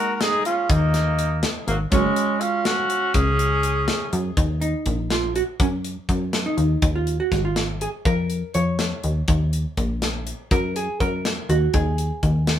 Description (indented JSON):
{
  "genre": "progressive instrumental, band music in an uneven meter",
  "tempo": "244 BPM (eighths)",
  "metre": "5/8",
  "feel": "straight",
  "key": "Eb minor",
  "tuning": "A4 = 440 Hz",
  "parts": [
    { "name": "breathy tenor saxophone", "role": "melody", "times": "0.0-4.1 s", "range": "Bb3 to Bb4", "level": "-24 LUFS", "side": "left 1 dB", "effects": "digital delay" },
    { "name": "clear trumpet", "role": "second line", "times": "0.0-4.1 s", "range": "Gb3 to Gb4", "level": "-26 LUFS", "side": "right 3 dB", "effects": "none" },
    { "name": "vintage hollow-body jazz guitar", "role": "accompaniment", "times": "0.0-12.6 s", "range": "Ab3 to Db5", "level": "-26 LUFS", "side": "right 4 dB", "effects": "none" },
    { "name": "tight metal drum kit", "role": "drums", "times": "0.2-12.6 s", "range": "hi-hat, kick drum, snare drum", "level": "-24 LUFS", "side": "left 1 dB", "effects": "none" },
    { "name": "plucky analog bass", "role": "bass", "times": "0.7-12.6 s", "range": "Gb1 to Gb2", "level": "-23 LUFS", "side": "left 1 dB", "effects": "none" }
  ],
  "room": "moderate studio reverb, RT60 0.6 s",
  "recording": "band playing live in one room",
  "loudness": "-20 LUFS",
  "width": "side -10 dB against mid",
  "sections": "0.0-4.4 A section; 4.4-12.6 B section",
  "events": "hollow-body jazz guitar solo 4.4-12.6",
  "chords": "0.0 Absus2; 1.9 Gbsus2; 4.4 Ebm; 6.8 Db6; 9.3 Ebm7; 11.7 Ab5/Eb"
}